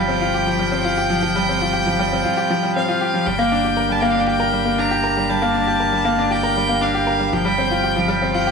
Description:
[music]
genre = piano and strings electronica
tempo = 118 BPM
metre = 4/4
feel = straight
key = G minor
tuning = A4 = 440 Hz
[part]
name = bright violin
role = melody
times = 0.0-8.5 s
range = F5 to Bb5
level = -22 LUFS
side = equal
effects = digital delay
[part]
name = bright grand piano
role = riff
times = 0.0-8.5 s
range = F3 to Bb4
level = -18 LUFS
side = left 1 dB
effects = digital delay
[part]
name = warm sub bass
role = bass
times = 0.0-8.5 s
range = G1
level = -28 LUFS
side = right 1 dB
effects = none
[sound]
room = moderate echo chamber reverb, RT60 1.3 s, studio ambience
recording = small room ambience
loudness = -16 LUFS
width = side -5 dB against mid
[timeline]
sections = 0.0-8.5 A section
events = none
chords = 0.0 Fsus2/G; 3.3 Gm; 7.3 Fsus2/G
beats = 0.21 0.72 | 1.23 1.74 2.25 2.75 | 3.26 3.77 4.28 4.79 | 5.30 5.81 6.31 6.82 | 7.33 7.84 8.35

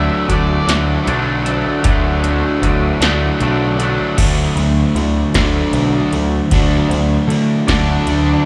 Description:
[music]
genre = quiet-loud alternative rock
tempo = 52 BPM (dotted quarters)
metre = 6/8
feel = straight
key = unclear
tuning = A4 = 439 Hz
[part]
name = octave-fuzz lead guitar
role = melody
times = 0.0-0.7, 7.7-8.4 s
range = D4 to E5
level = -25 LUFS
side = equal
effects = distortion, slapback echo, digital delay
[part]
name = twangy electric guitar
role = arpeggios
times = 0.0-4.2 s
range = D3 to D4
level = -24 LUFS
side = equal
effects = analog chorus, slapback echo, digital delay
[part]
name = fuzz guitar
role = riff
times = 0.0-8.4 s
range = D3 to D4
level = -23 LUFS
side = equal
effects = distortion
[part]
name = raw garage guitar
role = riff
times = 0.0-8.4 s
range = D3 to D4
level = -23 LUFS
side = equal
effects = overdrive, slapback echo
[part]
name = growling picked electric bass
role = bass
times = 0.0-8.3 s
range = B1 to D3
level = -20 LUFS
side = equal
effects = overdrive
[part]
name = electro analog drum machine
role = drums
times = 0.3-8.2 s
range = crash cymbal, hi-hat, kick drum, ride cymbal, snare drum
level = -22 LUFS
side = equal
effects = none
[part]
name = crunchy overdriven guitar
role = riff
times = 4.2-8.5 s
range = D3 to D4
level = -23 LUFS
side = equal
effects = none
[sound]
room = little or no reverb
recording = live gig heard through the venue's PA, club reverb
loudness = -15 LUFS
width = mono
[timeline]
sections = 0.0-4.2 A section; 4.2-8.5 B section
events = lead electric guitar solo 0.0-4.2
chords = 0.0 D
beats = 0.69 | 1.85 3.02 | 4.19 5.35 | 6.52 7.68

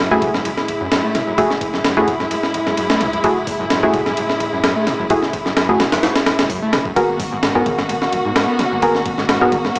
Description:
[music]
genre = breakbeat, breaks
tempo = 129 BPM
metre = 4/4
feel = swing 54% on 16ths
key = unclear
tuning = A4 = 438 Hz
[part]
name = warm studio string section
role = sustained chords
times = 0.0-9.8 s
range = A2 to F#4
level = -21 LUFS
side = equal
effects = vintage 12-bit sampler grit, sidechain pumping
[part]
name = screaming distorted acid line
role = riff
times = 0.0-9.8 s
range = E2 to B3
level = -24 LUFS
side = equal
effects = distortion, wide subtle chorus, tape echo
[part]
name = saturated sub bass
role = bass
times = 0.0-9.7 s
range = E1 to G#2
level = -31 LUFS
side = equal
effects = none
[part]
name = filtered dub chord stab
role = stabs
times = 0.1-9.5 s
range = A3 to A#4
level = -18 LUFS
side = equal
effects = chorus, tape echo
[part]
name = breakbeat sampler-style drum kit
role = drums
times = 0.1-9.8 s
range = hi-hat, kick drum, ride cymbal, snare drum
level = -19 LUFS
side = equal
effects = none
[sound]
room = moderate plate reverb, RT60 1.6 s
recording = small speaker sound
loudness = -15 LUFS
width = side -27 dB against mid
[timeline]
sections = 0.0-9.8 A section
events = none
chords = 0.0 F#m9; 7.0 G#m9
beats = 0.45 0.92 | 1.38 1.85 2.31 2.78 | 3.24 3.71 4.17 4.64 | 5.10 5.57 6.03 6.50 | 6.96 7.43 7.89 8.36 | 8.82 9.29 9.75

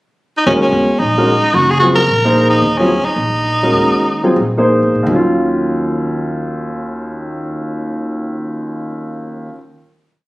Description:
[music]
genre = modal jazz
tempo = 156-224 BPM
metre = 4/4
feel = swing 61% on 8ths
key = Eb dorian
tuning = A4 = 435 Hz
[part]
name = growling tenor saxophone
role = melody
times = 0.4-4.7 s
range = Db4 to Bb4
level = -14 LUFS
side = equal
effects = none
[part]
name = warm grand piano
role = accompaniment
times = 0.5-9.6 s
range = Eb2 to C5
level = -15 LUFS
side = equal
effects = none
[part]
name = upright bass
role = bass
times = 0.5-9.4 s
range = Gb1 to Bb2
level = -21 LUFS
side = equal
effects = none
[sound]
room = moderate club reverb, RT60 0.6 s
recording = recorded on a phone in the room, studio reverb, compression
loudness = -12 LUFS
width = side -19 dB against mid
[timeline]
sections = 0.0-0.5 pickup bar; 0.5-5.1 A section; 5.1-8.2 final chord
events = slowing down 2.6-5.1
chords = 0.5 Ebm7; 2.6 Absus2; 5.1 Ebm9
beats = 0.20 | 0.47 0.74 1.01 1.28 | 1.55 1.81 2.08 2.35 | 2.62 2.89 3.16 3.45 | 3.74 4.04 4.36 4.71 | 5.08 5.46 5.84 6.23 | 6.61 7.00 7.38 7.77

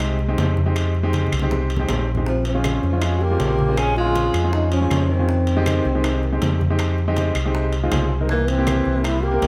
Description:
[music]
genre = Afro-Cuban jazz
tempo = 159 BPM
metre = 4/4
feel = straight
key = F minor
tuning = A4 = 440 Hz
[part]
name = breathy trombone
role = melody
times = 0.0-9.5 s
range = Ab3 to Ab4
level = -26 LUFS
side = equal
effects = none
[part]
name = breathy tenor saxophone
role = second line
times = 0.0-9.5 s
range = C3 to Db4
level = -31 LUFS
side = equal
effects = none
[part]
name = warm baby grand piano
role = accompaniment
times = 0.0-9.5 s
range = Ab3 to Ab5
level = -27 LUFS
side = equal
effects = none
[part]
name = fingered electric bass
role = bass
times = 0.0-9.5 s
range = Bb1 to F2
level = -24 LUFS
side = equal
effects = none
[part]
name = bongos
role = percussion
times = 0.0-9.5 s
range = none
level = -38 LUFS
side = equal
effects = none
[part]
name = claves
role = percussion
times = 0.0-9.2 s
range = none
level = -39 LUFS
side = equal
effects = none
[part]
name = congas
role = percussion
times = 0.0-9.5 s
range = none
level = -30 LUFS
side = equal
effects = none
[part]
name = timbales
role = percussion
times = 0.0-9.5 s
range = none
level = -34 LUFS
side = equal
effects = none
[sound]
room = moderate large studio reverb, RT60 1.4 s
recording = none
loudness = -20 LUFS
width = mono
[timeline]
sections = 0.0-9.5 A section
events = drum fill 1.1-2.3; grand piano fill 7.7-8.3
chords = 0.0 Fm7; 2.3 Bbm7; 5.3 Fm7; 8.3 C7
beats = 0.00 0.38 | 0.75 1.13 1.51 1.89 | 2.27 2.64 3.02 3.40 | 3.77 4.15 4.53 4.91 | 5.28 5.66 6.04 6.41 | 6.79 7.17 7.54 7.92 | 8.29 8.67 9.05 9.42

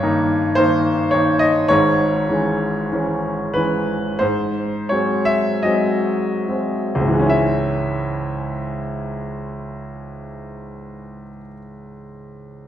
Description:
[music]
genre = classical, romantic character piece for solo piano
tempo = 35-55 BPM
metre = 4/4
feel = rubato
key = C# minor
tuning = A4 = 440 Hz
[part]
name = clear grand piano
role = solo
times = 0.0-12.7 s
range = G#1 to E5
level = -18 LUFS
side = equal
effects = none
[sound]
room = wet scoring stage reverb, RT60 1.7 s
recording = recorded in a church or concert hall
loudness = -17 LUFS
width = side -10 dB against mid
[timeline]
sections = 0.0-7.3 A section; 7.3-12.7 B section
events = slowing down 0.0-7.3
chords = 0.0 D#7/G; 1.7 C#m/G#; 4.2 G#7; 7.3 C#m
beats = 0.57 | 1.70 2.91 4.21 5.66 | 7.31 8.96 10.61 12.24

